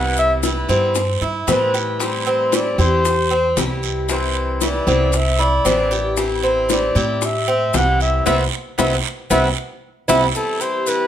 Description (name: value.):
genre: latin, Cuban son and guajira.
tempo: 115 BPM.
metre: 4/4.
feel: straight.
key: unclear.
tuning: A4 = 436 Hz.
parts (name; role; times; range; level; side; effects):
trumpet with bucket mute; melody; 0.0-11.1 s; A4 to F#5; -21 LUFS; left 1 dB; none.
picked swing-style acoustic guitar; accompaniment; 0.0-11.1 s; C3 to E4; -26 LUFS; left 2 dB; none.
upright bass; bass; 0.0-10.3 s; A1 to A2; -22 LUFS; equal; none.
maracas; percussion; 0.2-11.1 s; none; -30 LUFS; left 5 dB; none.
Cuban tres; arpeggios; 0.4-11.1 s; B3 to G4; -20 LUFS; right 1 dB; none.
bongos; percussion; 0.4-10.2 s; none; -26 LUFS; left 4 dB; none.
guiro; percussion; 0.4-11.1 s; none; -29 LUFS; right 10 dB; none.
room: moderate large studio reverb, RT60 1.1 s.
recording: none.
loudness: -16 LUFS.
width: side -10 dB against mid.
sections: 0.0-10.3 A section.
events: muted trumpet solo 0.0-10.3; band accent 8.3-10.3; drum fill 10.1.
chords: 0.0 Cmaj7; 2.0 Am7; 4.1 Cmaj9; 6.2 Am7; 8.3 Cmaj7; 10.3 C6.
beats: 0.43 0.95 1.48 | 2.00 2.52 3.04 3.56 | 4.09 4.61 5.13 5.65 | 6.17 6.70 7.22 7.74 | 8.26 8.78 9.31 9.83 | 10.35 10.87.